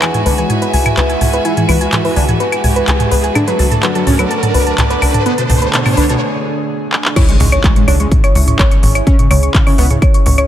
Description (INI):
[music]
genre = melodic techno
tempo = 126 BPM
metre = 4/4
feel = straight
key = C# phrygian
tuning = A4 = 441 Hz
[part]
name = fat analog lead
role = melody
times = 0.0-10.0 s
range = B2 to E4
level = -20 LUFS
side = equal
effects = analog chorus, sidechain pumping, tape echo
[part]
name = lush unison pad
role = sustained chords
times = 0.0-10.5 s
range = C#3 to G#4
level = -21 LUFS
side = equal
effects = chorus, sidechain pumping
[part]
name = soft round pluck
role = arpeggios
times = 0.0-10.4 s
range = B4 to C#6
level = -19 LUFS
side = equal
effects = chorus, sidechain pumping, digital delay
[part]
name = techno drum kit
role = drums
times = 0.0-10.5 s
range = claves, crash cymbal, handclaps, hi-hat, toms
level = -17 LUFS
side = equal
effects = none
[part]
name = riser and impact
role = sound effects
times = 0.0-9.1 s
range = none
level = -22 LUFS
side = equal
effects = none
[part]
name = bright chamber string section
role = texture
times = 0.0-6.2 s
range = F#4 to G#5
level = -22 LUFS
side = right 2 dB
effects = sidechain pumping
[part]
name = tight sequencer bass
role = bass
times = 0.3-10.4 s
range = G#1 to C#2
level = -14 LUFS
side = equal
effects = sidechain pumping
[part]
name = electronic kick drum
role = drums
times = 7.2-10.1 s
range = none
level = -12 LUFS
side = equal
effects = none
[sound]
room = light reverb, digital ambience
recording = none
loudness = -10 LUFS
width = side -11 dB against mid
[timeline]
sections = 0.0-7.2 A section; 7.2-10.5 B section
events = build-up 0.0-7.2; riser 0.0-6.2; filter sweep on analog synth lead 0.0-7.2; break 6.2-7.2; drum fill 6.9; drop 7.2-10.5; impact 7.2-9.1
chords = 0.0 Eadd9/C#; 3.4 Bm7/C#; 7.2 C#m